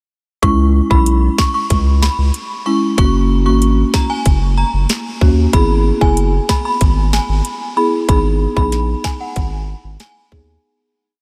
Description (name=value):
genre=dancehall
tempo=94 BPM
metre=4/4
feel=straight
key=G# minor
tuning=A4 = 440 Hz
part: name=synth chime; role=melody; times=0.4-10.5 s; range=F#5 to C#6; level=-24 LUFS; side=equal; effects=ensemble chorus, phaser, analog delay
part: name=marimba with medium mallets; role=accompaniment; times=0.4-10.6 s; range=G#3 to G#4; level=-21 LUFS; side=equal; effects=none
part: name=saturated sub bass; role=bass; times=0.4-10.6 s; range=F#1 to D#2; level=-17 LUFS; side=equal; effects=none
part: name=island pop drum kit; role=drums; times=0.4-10.5 s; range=hi-hat, kick drum, snare drum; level=-19 LUFS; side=equal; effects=none
room=moderate huge ambient reverb, RT60 8.0 s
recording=dreamy mix soaked in reverb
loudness=-15 LUFS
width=mono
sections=0.4-10.6 verse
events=fade-out 8.1-10.6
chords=0.4 C#m; 3.0 F#; 5.5 E; 8.1 G#m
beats=| 0.43 1.07 1.70 2.34 | 2.98 3.62 4.26 4.90 | 5.53 6.17 6.81 7.45 | 8.09 8.72 9.36 10.00